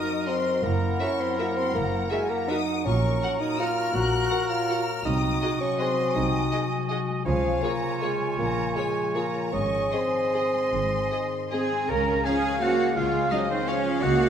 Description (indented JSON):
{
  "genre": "classical",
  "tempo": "143-183 BPM",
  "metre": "3/4",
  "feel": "rubato",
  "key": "Db major",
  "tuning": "A4 = 438 Hz",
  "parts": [
    { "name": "bright oboe", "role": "second line", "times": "0.0-14.3 s", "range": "Bb4 to Bb5", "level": "-34 LUFS", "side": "right 1 dB", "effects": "none" },
    { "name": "clear symphonic violin section", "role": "second line", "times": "0.0-14.3 s", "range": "Db5 to Gb6", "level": "-35 LUFS", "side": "left 4 dB", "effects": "none" },
    { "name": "hollow flute section", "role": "second line", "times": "0.0-14.3 s", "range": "C5 to Bb5", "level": "-34 LUFS", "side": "left 2 dB", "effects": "none" },
    { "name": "mellow clarinet", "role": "second line", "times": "0.0-14.3 s", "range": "Fb4 to F5", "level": "-34 LUFS", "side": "left 1 dB", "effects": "none" },
    { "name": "dark bassoon", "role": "accompaniment", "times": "0.0-14.3 s", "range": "F3 to Gb4", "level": "-28 LUFS", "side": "right 1 dB", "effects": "none" },
    { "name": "concert harp", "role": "arpeggios", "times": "0.0-14.3 s", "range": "Gb2 to Db6", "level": "-33 LUFS", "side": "left 6 dB", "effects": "none" },
    { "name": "clear symphonic violin section", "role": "melody", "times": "0.3-13.8 s", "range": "Db5 to Gb5", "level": "-38 LUFS", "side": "left 4 dB", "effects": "none" },
    { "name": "rich symphonic viola section", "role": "accompaniment", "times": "0.3-14.3 s", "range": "Eb3 to Bb4", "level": "-33 LUFS", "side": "right 1 dB", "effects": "none" },
    { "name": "rich symphonic cello section", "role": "bass", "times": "0.6-14.3 s", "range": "Gb2 to Bb4", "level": "-29 LUFS", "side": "right 3 dB", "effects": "none" },
    { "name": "rich symphonic double bass section", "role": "bass", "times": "0.6-14.3 s", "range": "Gb1 to Db2", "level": "-30 LUFS", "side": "right 2 dB", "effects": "none" },
    { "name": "mellow French horn section", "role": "sustained chords", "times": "12.3-13.8 s", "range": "F3 to Db4", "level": "-36 LUFS", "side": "left 4 dB", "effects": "none" }
  ],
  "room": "wet scoring stage reverb, RT60 1.8 s",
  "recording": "none",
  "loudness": "-23 LUFS",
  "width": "side -8 dB against mid",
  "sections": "0.0-11.9 A section; 11.9-14.3 B section",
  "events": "none",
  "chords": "0.0 Ebm/Gb; 0.6 Gb7; 2.9 Gb/Bb; 5.1 Ab7/C; 7.3 Db; 8.4 Bbm7; 9.5 Ab; 11.9 Db",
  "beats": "0.27 | 0.63 1.01 1.40 | 1.75 2.12 2.50 | 2.86 3.22 3.60 | 3.95 4.31 4.69 | 5.05 5.42 5.79 | 6.15 6.52 6.90 | 7.26 7.63 8.02 | 8.39 8.76 9.15 | 9.53 9.93 10.34 | 10.72 11.11 11.52 | 11.90 12.26 12.62 | 12.97 13.32 13.68 | 14.03"
}